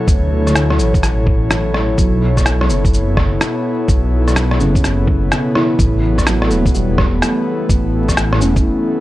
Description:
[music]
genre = future garage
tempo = 126 BPM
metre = 4/4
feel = swing 64% on 16ths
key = unclear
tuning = A4 = 437 Hz
[part]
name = felt-muted upright piano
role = accompaniment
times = 0.0-9.0 s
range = C#3 to E4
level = -22 LUFS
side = right 1 dB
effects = sidechain pumping, analog delay
[part]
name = airy breathy pad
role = sustained chords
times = 0.0-9.0 s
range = B2 to C#5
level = -19 LUFS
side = left 1 dB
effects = chorus, vintage 12-bit sampler grit, sidechain pumping
[part]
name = dark detuned saw bass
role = bass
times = 0.1-8.6 s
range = E1 to D2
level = -16 LUFS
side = equal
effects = tube saturation, sidechain pumping
[part]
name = electronic kick drum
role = drums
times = 0.1-8.6 s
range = none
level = -16 LUFS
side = equal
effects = none
[part]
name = electronic shaker and rim click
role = drums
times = 0.1-8.6 s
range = none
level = -19 LUFS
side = equal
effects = none
[sound]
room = light reverb, digital ambience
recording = cassette tape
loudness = -12 LUFS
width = side -16 dB against mid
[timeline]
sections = 0.0-9.0 A section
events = break 8.6-9.0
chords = 0.0 Dmaj9; 2.0 B9sus4; 5.8 Asus2

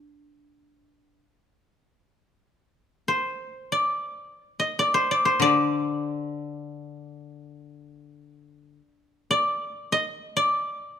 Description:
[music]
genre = japanese traditional, Japanese chamber music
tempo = free time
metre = none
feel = none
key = unclear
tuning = A4 = 439 Hz
[part]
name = koto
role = melody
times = 0.0-11.0 s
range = D4 to Eb5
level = -23 LUFS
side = equal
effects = none
[part]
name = koto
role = accompaniment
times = 5.4-8.8 s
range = D3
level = -28 LUFS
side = left 6 dB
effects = none
[sound]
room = light reverb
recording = close, detailed microphones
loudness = -23 LUFS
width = side -9 dB against mid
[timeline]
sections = 0.0-2.1 A section; 2.1-11.0 A section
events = none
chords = none

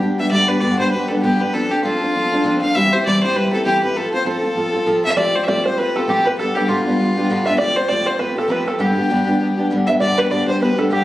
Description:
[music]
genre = celtic folk, Celtic reel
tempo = 198 BPM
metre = 4/4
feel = swing 58% on 8ths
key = G mixolydian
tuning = A4 = 439 Hz
[part]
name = picked steel-string acoustic guitar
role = accompaniment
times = 0.0-11.0 s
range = G2 to A4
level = -18 LUFS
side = equal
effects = none
[part]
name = rich fiddle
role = melody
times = 0.2-11.0 s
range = F4 to F5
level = -19 LUFS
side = left 1 dB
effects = plate reverb
[part]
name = open-back banjo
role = second line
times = 5.1-11.0 s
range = F4 to E5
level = -21 LUFS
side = right 2 dB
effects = none
[sound]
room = moderate small room reverb, RT60 0.5 s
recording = recorded on a phone in the room, club reverb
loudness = -15 LUFS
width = side -15 dB against mid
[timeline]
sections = 0.3-10.0 A section; 10.0-11.0 A section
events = none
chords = 0.3 G; 1.5 F6; 2.7 C/E; 4.0 F; 5.2 Fadd9; 6.4 G; 7.6 Fadd9; 8.8 G

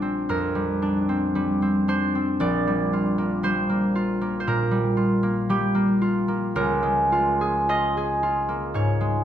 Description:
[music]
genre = classical, solo harp piece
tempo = 57 BPM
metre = 4/4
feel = rubato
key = unclear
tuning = A4 = 440 Hz
[part]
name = concert harp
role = solo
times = 0.0-9.2 s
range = Bb1 to Eb5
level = -21 LUFS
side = equal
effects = none
[sound]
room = wet recital hall reverb, RT60 1.6 s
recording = none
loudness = -21 LUFS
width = side -10 dB against mid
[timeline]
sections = 0.0-9.2 A section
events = none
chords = 0.0 Bb69; 6.6 Db6

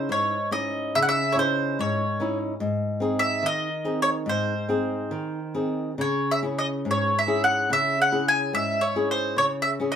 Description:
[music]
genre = fado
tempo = 71 BPM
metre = 2/4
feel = rubato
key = C# harmonic minor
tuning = A4 = 440 Hz
[part]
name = mandolin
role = melody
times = 0.0-10.0 s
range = B#4 to G#5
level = -23 LUFS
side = right 1 dB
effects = none
[part]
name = flamenco guitar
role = accompaniment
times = 0.0-10.0 s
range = G#2 to G#4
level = -26 LUFS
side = left 1 dB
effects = none
[sound]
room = wet studio ambience, RT60 0.5 s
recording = band playing live in one room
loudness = -22 LUFS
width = side -8 dB against mid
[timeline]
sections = 0.0-10.0 A section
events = none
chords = 0.0 C#madd9; 2.6 G#; 6.0 C#m

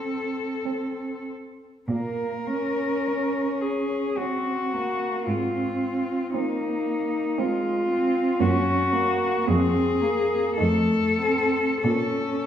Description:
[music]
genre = classical, lyrical piece for cello ensemble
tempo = 46-60 BPM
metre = 3/4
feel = rubato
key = Bb minor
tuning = A4 = 442 Hz
[part]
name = muted cello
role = melody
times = 0.0-12.5 s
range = Eb4 to Bb4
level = -25 LUFS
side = left 3 dB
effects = none
[part]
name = muted cello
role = second line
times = 0.0-11.5 s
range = Bb3 to Eb4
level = -32 LUFS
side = right 6 dB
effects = none
[part]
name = muted cello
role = accompaniment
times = 0.0-12.5 s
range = Ab3 to Db4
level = -27 LUFS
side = right 1 dB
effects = none
[part]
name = muted cello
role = bass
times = 1.9-12.5 s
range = F2 to Bb2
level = -28 LUFS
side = right 1 dB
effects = none
[sound]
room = wet recital hall reverb, RT60 1.8 s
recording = heard from further back in the room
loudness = -22 LUFS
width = side -9 dB against mid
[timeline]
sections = 0.0-12.5 A section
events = none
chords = 0.0 F (rootless); 1.9 Bbm; 5.3 Fm/Ab; 8.4 Gb; 9.5 Bb5/F; 10.6 F7; 11.8 Bbm

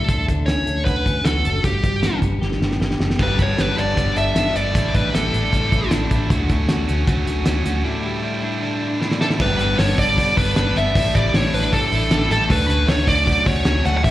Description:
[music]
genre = jangly indie pop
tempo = 155 BPM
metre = 4/4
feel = straight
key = unclear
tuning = A4 = 440 Hz
[part]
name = smooth overdriven lead guitar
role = melody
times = 0.0-5.9, 9.2-14.1 s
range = G4 to F#5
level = -21 LUFS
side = equal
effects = slapback echo, digital delay
[part]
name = twelve-string electric guitar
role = arpeggios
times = 0.0-14.1 s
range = G2 to A4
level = -25 LUFS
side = left 2 dB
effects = slapback echo
[part]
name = vintage muted fingered electric bass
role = bass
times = 0.0-14.1 s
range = F#1 to D2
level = -22 LUFS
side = equal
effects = none
[part]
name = cloth-damped thuddy drum kit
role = drums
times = 0.1-14.1 s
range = crash cymbal, hi-hat, kick drum, snare drum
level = -21 LUFS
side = equal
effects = none
[part]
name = cranked stack guitar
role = accompaniment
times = 3.2-14.1 s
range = A2 to A4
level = -26 LUFS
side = right 4 dB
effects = overdrive, slapback echo
[sound]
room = light reverb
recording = live gig heard through the venue's PA, recital hall reverb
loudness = -16 LUFS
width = side -14 dB against mid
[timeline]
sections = 0.0-3.2 A section; 3.2-9.4 B section; 9.4-14.1 C section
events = drum fill 2.4-3.2, 9.0-9.4; break 7.8-9.4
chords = 0.1 Dmaj7; 1.6 G; 3.2 Gadd9; 4.7 A7sus4; 6.3 Dmaj7; 7.8 A7sus4; 9.4 Gadd9; 10.9 A7sus4; 12.5 Dmaj7

